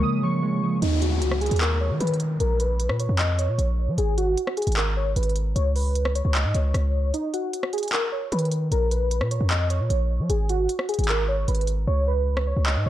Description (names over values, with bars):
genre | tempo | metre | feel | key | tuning
hip hop, trap | 152 BPM | 4/4 | half-time | unclear | A4 = 440 Hz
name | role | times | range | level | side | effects
warbly lo-fi synth keys | melody | 0.0-12.9 s | Eb4 to Eb6 | -27 LUFS | equal | chorus, low-pass filter
warbly dusty pluck | second line | 0.0-0.8 s | Bb4 | -38 LUFS | left 3 dB | chorus, digital delay
mellow electric guitar | accompaniment | 0.0-0.8 s | Db3 to Bb3 | -23 LUFS | right 2 dB | low-pass filter
deep dark ambient pad | sustained chords | 0.0-0.8 s | Ab3 to Db5 | -37 LUFS | left 3 dB | chorus, built-in reverb
hard-hitting 808-style bass | bass | 0.0-12.9 s | Ab1 to F3 | -23 LUFS | equal | none
trap drum kit | drums | 0.8-12.8 s | handclaps, hi-hat, rim click | -29 LUFS | equal | none
downlifter | sound effects | 0.8-4.0 s | none | -35 LUFS | left 1 dB | none
room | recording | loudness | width
little or no reverb | dark, warm production | -21 LUFS | side -13 dB against mid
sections
0.8-12.9 A section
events
break 0.0-0.8, 7.1-7.9; hi-hats muted 11.9-12.9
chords
0.0 Db6; 0.8 Db13sus4; 2.4 Bbm; 4.0 Abm11; 5.6 Db5; 7.1 Ebm; 8.7 Bbm; 10.3 Ab7sus4; 11.9 Db5